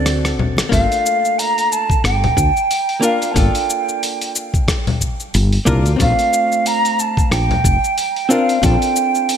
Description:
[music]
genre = sunset chillout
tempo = 91 BPM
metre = 4/4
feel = swing 57% on 16ths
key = unclear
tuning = A4 = 440 Hz
[part]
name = mellow hollow silver concert flute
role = melody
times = 0.0-9.4 s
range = D5 to Bb5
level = -18 LUFS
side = right 2 dB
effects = tape echo
[part]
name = hollow-body jazz guitar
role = accompaniment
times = 0.0-9.4 s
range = A3 to Bb4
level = -21 LUFS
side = moving between left 5 dB and right 6 dB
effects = auto-pan, ping-pong delay
[part]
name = woody fretless electric bass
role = bass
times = 0.0-8.8 s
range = F1 to D2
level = -16 LUFS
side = equal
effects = none
[part]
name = dusty soul sampler-style drum kit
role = drums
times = 0.1-9.4 s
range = cabasa, congas, hi-hat, rim click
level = -22 LUFS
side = left 2 dB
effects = small room reverb
[part]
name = congas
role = percussion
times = 0.6-0.7 s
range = none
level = -30 LUFS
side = equal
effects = none
[part]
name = electronic kick drum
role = drums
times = 0.7-8.8 s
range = none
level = -18 LUFS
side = equal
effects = small room reverb
[sound]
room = light reverb, digital ambience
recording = none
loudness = -14 LUFS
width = side -8 dB against mid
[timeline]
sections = 0.7-9.4 A section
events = break 0.0-0.7; drum fill 0.1-0.7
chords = 0.0 D7; 0.7 Gm7; 6.0 Bbmaj7

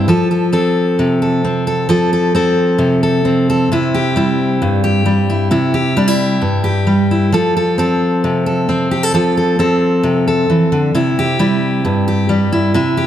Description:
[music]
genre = folk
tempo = 132 BPM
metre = 4/4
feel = straight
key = unclear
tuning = A4 = 441 Hz
[part]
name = fingerpicked steel-string acoustic guitar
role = solo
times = 0.0-13.1 s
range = G2 to A4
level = -12 LUFS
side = equal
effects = none
[sound]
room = moderate scoring stage reverb, RT60 2.1 s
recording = none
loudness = -12 LUFS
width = side -10 dB against mid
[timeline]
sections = 0.1-13.1 A section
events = none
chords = 0.1 F; 3.7 C; 7.3 F; 10.9 C

